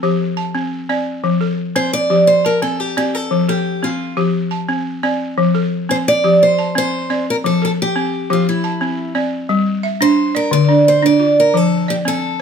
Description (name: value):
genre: west african traditional, West African string and xylophone music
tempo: 116 BPM (dotted quarters)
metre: 12/8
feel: straight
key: F major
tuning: A4 = 440 Hz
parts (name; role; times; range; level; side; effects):
- picked acoustic archtop guitar; melody; 0.0-12.4 s; E4 to D5; -16 LUFS; right 1 dB; none
- balafon; arpeggios; 0.0-12.4 s; D3 to A5; -16 LUFS; left 1 dB; none
room: moderate studio reverb, RT60 0.6 s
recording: none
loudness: -14 LUFS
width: side -7 dB against mid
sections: 0.0-9.5 A section; 9.5-12.4 B section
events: none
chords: 0.2 C5; 1.2 F; 2.3 C5; 3.3 F; 4.3 C5; 5.4 F; 6.4 C5; 7.4 F; 8.5 C; 9.5 G5; 10.5 Dm; 11.5 F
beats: 0.20 0.72 | 1.24 1.76 2.28 2.80 | 3.31 3.83 4.35 4.87 | 5.38 5.90 6.41 6.93 | 7.44 7.96 8.47 8.98 | 9.50 10.01 10.52 11.03 | 11.55 12.06